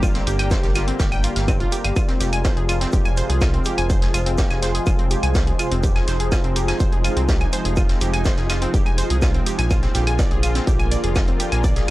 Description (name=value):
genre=melodic techno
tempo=124 BPM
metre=4/4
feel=straight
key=F dorian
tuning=A4 = 440 Hz
part: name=lush unison pad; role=sustained chords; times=0.0-11.9 s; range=C3 to G4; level=-29 LUFS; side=equal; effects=chorus, phaser, sidechain pumping
part: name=analog pluck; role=arpeggios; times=0.0-11.9 s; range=C4 to Ab5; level=-28 LUFS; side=equal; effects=chorus, sidechain pumping, tape echo
part: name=round analog bass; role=bass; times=0.0-11.9 s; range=F1 to C2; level=-22 LUFS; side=equal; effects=sidechain pumping
part: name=electronic hi-hat and claves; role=drums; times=0.0-11.9 s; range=none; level=-28 LUFS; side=right 1 dB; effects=none
part: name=electronic kick drum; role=drums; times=0.0-11.7 s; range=none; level=-20 LUFS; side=equal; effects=distortion
part: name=shaker and snare drum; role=drums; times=0.0-11.9 s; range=none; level=-34 LUFS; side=equal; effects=high-pass filter on snare, high-pass filter on perc, high-pass filter on room
part: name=ethereal airy pad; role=texture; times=0.0-11.9 s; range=F4 to Bb5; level=-29 LUFS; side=equal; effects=ensemble chorus, built-in reverb, sidechain pumping
room=digital ambience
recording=dry, gritty hardware recording, cassette tape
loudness=-17 LUFS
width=side -17 dB against mid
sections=0.0-11.9 A section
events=none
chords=0.0 Gm; 2.0 Fm; 9.7 Bb